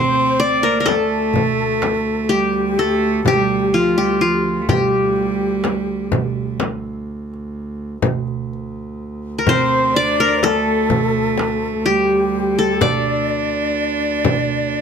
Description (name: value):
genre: Arabic maqam ensemble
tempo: 126 BPM (eighths)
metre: 10/8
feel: straight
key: D maqam bayati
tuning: A4 = 440 Hz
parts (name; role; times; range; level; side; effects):
- qanun; melody; 0.0-14.8 s; F4 to D5; -18 LUFS; left 2 dB; none
- breathy reedy ney; second line; 0.0-14.8 s; F4 to D5; -24 LUFS; left 7 dB; none
- clear cello; second line; 0.0-14.8 s; F3 to D4; -22 LUFS; right 8 dB; none
- clear double bass; drone; 0.0-14.8 s; D2; -27 LUFS; right 1 dB; none
- darbuka; percussion; 0.1-14.8 s; none; -24 LUFS; right 7 dB; none
- frame drum; percussion; 0.9-14.5 s; none; -21 LUFS; left 6 dB; none
room: light reverb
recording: close, detailed microphones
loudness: -15 LUFS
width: side -7 dB against mid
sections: 0.0-14.8 A section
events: none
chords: none